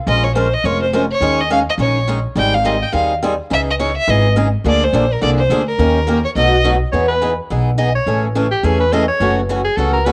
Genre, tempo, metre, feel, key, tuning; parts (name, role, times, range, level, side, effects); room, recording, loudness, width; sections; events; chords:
acoustic string swing (jazz manouche); 210 BPM; 4/4; swing 59% on 8ths; E major from 6.9 s; A4 = 440 Hz
rich violin; melody; 0.1-6.6 s; Bb4 to G5; -20 LUFS; equal
picked swing-style acoustic guitar; accompaniment; 0.1-10.1 s; B2 to Bb4; -20 LUFS; equal; cassette tape
upright bass; bass; 0.1-10.1 s; F1 to E2; -21 LUFS; equal
bright soprano saxophone; second line; 6.9-10.1 s; G4 to D#5; -21 LUFS; equal; cassette tape
light reverb, small room ambience; home recording on cassette; -16 LUFS; mono
0.0-6.9 A section; 6.9-10.1 B section
soprano saxophone solo 6.9-10.1
0.1 Bbm7; 1.2 Eb7sus4; 2.4 Abmaj7; 3.5 Dbmadd9; 4.6 Bb7; 5.8 Eb7; 6.4 B7; 6.9 Emaj7; 8.1 Amaj7; 9.2 F#m7